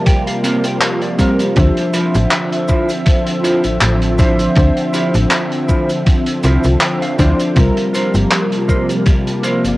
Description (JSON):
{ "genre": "vaporwave", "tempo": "80 BPM", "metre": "4/4", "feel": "swing 55% on 16ths", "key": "D minor", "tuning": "A4 = 442 Hz", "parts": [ { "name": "warbly lo-fi synth keys", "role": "accompaniment", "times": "0.0-9.8 s", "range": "F3 to E5", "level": "-19 LUFS", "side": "equal", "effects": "wide subtle chorus, cassette tape, tape echo" }, { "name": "soft string machine", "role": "sustained chords", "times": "0.0-9.8 s", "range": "C3 to E5", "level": "-19 LUFS", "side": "equal", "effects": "phaser, ensemble chorus, cassette tape" }, { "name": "mellow electric guitar", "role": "riff", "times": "0.0-9.6 s", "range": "C4 to G5", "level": "-23 LUFS", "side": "right 1 dB", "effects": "lush chorus, cassette tape, tape echo" }, { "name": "electronic kick drum", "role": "drums", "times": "0.1-9.2 s", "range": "none", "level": "-13 LUFS", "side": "equal", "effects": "none" }, { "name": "loose indie drum kit", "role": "drums", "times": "0.1-9.8 s", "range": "cabasa, handclaps, hi-hat", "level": "-21 LUFS", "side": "equal", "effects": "none" }, { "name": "slap-like FM bass", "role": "bass", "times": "1.6-9.8 s", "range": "G1 to D2", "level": "-14 LUFS", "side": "equal", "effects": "none" } ], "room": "light reverb, small room ambience", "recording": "home recording on cassette", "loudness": "-12 LUFS", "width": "side -18 dB against mid", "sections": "0.0-9.8 A section", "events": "clean electric guitar fill 0.0-1.6, 6.4-7.6", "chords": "0.0 C7sus4; 1.6 Dm9; 7.6 C7sus4" }